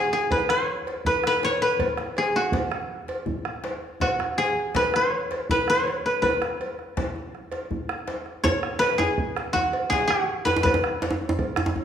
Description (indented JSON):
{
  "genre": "west african traditional, West African drum ensemble",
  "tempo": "108 BPM (dotted quarters)",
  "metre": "12/8",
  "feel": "straight",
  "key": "unclear",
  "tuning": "A4 = 437 Hz",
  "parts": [
    { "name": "koto", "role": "melody", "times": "0.0-11.8 s", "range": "F#4 to C#5", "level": "-22 LUFS", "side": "left 1 dB", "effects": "none" },
    { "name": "bombo", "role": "percussion", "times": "0.3-11.7 s", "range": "none", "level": "-32 LUFS", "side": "right 3 dB", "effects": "none" },
    { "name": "cowbell", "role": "percussion", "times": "0.3-11.6 s", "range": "none", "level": "-33 LUFS", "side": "right 2 dB", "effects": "none" },
    { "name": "djembe", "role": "percussion", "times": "0.3-11.8 s", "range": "none", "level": "-34 LUFS", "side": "left 3 dB", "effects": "none" },
    { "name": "djembe", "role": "percussion", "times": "8.4-11.8 s", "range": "none", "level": "-27 LUFS", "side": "right 2 dB", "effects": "none" }
  ],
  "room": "moderate recital hall reverb, RT60 1.7 s",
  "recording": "studio reverb",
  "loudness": "-22 LUFS",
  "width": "side -8 dB against mid",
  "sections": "0.0-8.4 A section; 8.4-11.8 B section",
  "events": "none",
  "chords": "none"
}